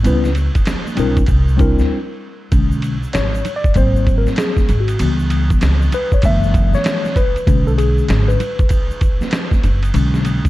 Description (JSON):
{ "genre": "hip hop, jazz-hop", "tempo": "97 BPM", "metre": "4/4", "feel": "swing 63% on 16ths", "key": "B dorian", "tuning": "A4 = 444 Hz", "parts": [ { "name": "tine electric piano", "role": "accompaniment", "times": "0.0-10.5 s", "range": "D3 to E5", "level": "-20 LUFS", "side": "left 2 dB", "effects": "medium stereo tremolo" }, { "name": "upright bass", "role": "bass", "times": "0.0-10.4 s", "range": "F#1 to D2", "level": "-16 LUFS", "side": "equal", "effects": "none" }, { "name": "trip hop sampler-style drum kit", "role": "drums", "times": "0.0-10.5 s", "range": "hi-hat, kick drum, ride cymbal, snare drum", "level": "-17 LUFS", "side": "equal", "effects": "none" }, { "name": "tube shaker and congas", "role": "percussion", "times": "0.1-10.5 s", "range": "none", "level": "-32 LUFS", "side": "right 5 dB", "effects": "none" } ], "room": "digital ambience", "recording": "dark, warm production", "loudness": "-13 LUFS", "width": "side -17 dB against mid", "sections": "0.0-2.5 A section; 2.5-10.5 B section", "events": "break 1.9-2.5; tine electric piano solo 2.5-10.5", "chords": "0.0 C#m7b5; 1.3 C9; 2.5 Bm69; 3.8 G#7; 5.0 C#m7b5; 6.2 F#7; 7.5 Bm69", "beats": "| 0.05 0.67 1.29 1.90 | 2.52 3.14 3.76 4.38 | 5.00 5.62 6.23 6.85 | 7.47 8.09 8.71 9.33 | 9.95" }